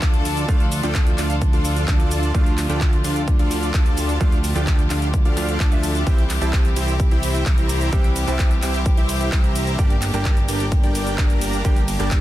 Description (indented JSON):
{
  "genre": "EDM, festival progressive house",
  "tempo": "129 BPM",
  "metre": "4/4",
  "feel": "straight",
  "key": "D minor",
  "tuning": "A4 = 440 Hz",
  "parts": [
    { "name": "direct-recorded clean electric guitar", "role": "accompaniment", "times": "0.0-12.2 s", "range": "G2 to E5", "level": "-28 LUFS", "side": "right 4 dB", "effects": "sidechain pumping, ping-pong delay" },
    { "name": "rich studio string section", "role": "sustained chords", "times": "0.0-12.2 s", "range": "C3 to A4", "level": "-29 LUFS", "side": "left 2 dB", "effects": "sidechain pumping" },
    { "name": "dense compressed supersaw", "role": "riff", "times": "0.0-12.2 s", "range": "D4 to Bb5", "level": "-27 LUFS", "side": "equal", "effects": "sidechain pumping, ping-pong delay" },
    { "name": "fat analog bass", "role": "bass", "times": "0.0-12.2 s", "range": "G1 to D2", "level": "-24 LUFS", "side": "equal", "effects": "sidechain pumping" },
    { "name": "big-room dance drum kit", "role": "drums", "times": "0.0-12.2 s", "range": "handclaps, hi-hat, ride cymbal, shaker", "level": "-29 LUFS", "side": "equal", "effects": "none" },
    { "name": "electronic kick drum", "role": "drums", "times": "0.0-12.2 s", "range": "none", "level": "-18 LUFS", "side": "equal", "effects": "none" }
  ],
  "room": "digital ambience",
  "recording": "dense, heavily limited modern master",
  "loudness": "-17 LUFS",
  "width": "side -14 dB against mid",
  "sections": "0.0-12.2 A section",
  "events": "none",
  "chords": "0.0 Dm; 6.1 C; 9.8 Gm",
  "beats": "0.02 | 0.49 0.95 1.42 1.88 | 2.35 2.81 3.28 3.74 | 4.21 4.67 5.14 5.60 | 6.07 6.53 7.00 7.46 | 7.93 8.39 8.86 9.32 | 9.79 10.25 10.72 11.18 | 11.65 12.11"
}